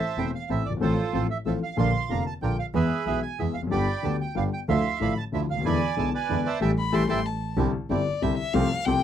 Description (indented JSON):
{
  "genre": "tango",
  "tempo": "186 BPM",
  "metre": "3/4",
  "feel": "rubato",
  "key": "A minor",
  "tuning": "A4 = 439 Hz",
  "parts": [
    { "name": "bandoneon", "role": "melody", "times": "0.0-7.2 s", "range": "F4 to C6", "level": "-29 LUFS", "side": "right 6 dB", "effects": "none" },
    { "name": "warm concert grand piano", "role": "accompaniment", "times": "0.2-9.0 s", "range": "E1 to A4", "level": "-27 LUFS", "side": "left 4 dB", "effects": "none" },
    { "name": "bandoneon", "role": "stabs", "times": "0.2-9.0 s", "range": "F3 to Bb4", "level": "-34 LUFS", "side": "right 8 dB", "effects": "none" },
    { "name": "clear double bass", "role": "bass", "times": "0.2-9.0 s", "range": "E1 to E2", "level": "-29 LUFS", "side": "right 3 dB", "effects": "none" },
    { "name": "warm violin", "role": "second line", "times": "6.8-9.0 s", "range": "D5 to C6", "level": "-29 LUFS", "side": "left 6 dB", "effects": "none" }
  ],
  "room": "light reverb",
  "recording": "dry, close 1970s-style studio recording",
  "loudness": "-23 LUFS",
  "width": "side -10 dB against mid",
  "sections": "0.0-7.6 A section; 7.6-9.0 B section",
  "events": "band accent 6.6-7.6; violin solo 7.6-9.0",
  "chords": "0.0 Am; 0.8 F/A; 1.8 Bb; 2.7 E; 3.7 G; 4.7 Dmadd9; 5.6 E7; 6.6 Am7; 7.6 Cadd9",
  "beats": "0.18 0.50 | 0.82 1.14 1.46 | 1.78 2.11 2.43 | 2.75 3.07 3.39 | 3.72 4.04 4.36 | 4.68 5.01 5.33 | 5.65 5.97 6.29 | 6.61 6.93 7.25 | 7.58 7.90 8.22 | 8.55 8.87"
}